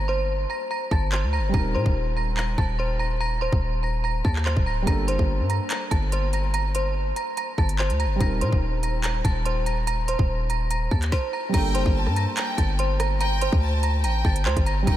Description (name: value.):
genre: hip hop, drill.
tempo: 144 BPM.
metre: 4/4.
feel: half-time.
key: G minor.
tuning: A4 = 441 Hz.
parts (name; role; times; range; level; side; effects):
metallic FM bell; melody; 0.0-15.0 s; C5 to Bb6; -28 LUFS; right 1 dB; chorus, low-pass filter.
felt-muted upright piano; accompaniment; 0.0-15.0 s; G3 to Bb4; -33 LUFS; right 3 dB; low-pass filter.
hard-hitting 808-style bass; bass; 0.0-15.0 s; D1 to Bb2; -24 LUFS; equal; none.
drill drum kit; drums; 0.9-15.0 s; crash cymbal, handclaps, hi-hat, kick drum, rim click, snare drum; -26 LUFS; equal; none.
bright studio violin section; second line; 11.5-15.0 s; G5 to A5; -31 LUFS; left 1 dB; ping-pong delay.
room: light reverb.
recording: none.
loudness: -21 LUFS.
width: side -13 dB against mid.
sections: 0.0-11.5 A section; 11.5-15.0 B section.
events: break 0.0-4.9.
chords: 0.0 Gmadd9; 1.5 Eb6; 4.9 Gmadd9; 8.2 Eb6; 11.5 Gmadd9.